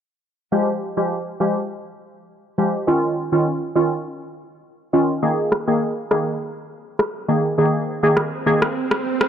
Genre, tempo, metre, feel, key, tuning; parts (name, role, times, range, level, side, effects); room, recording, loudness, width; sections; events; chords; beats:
dancehall; 102 BPM; 4/4; straight; A4 = 438 Hz
glassy wavetable pluck; accompaniment; 0.5-8.6 s; Eb3 to Ab4; -19 LUFS; equal; chorus
swell; sound effects; 7.9-9.3 s; -27 LUFS; right 5 dB
electronic rim click; drums; 5.5-9.3 s; -22 LUFS; equal; overdrive
light reverb; dry, gritty hardware recording, cassette tape, low-pass filter; -18 LUFS; side -9 dB against mid
0.5-9.3 A section
filter sweep 0.5-9.3; swell 7.9-9.3
0.5 Fmadd9; 2.9 Dbadd9; 5.2 Absus2
| 0.52 1.11 1.70 2.29 | 2.88 3.46 4.05 4.64 | 5.23 5.82 6.41 6.99 | 7.58 8.17 8.76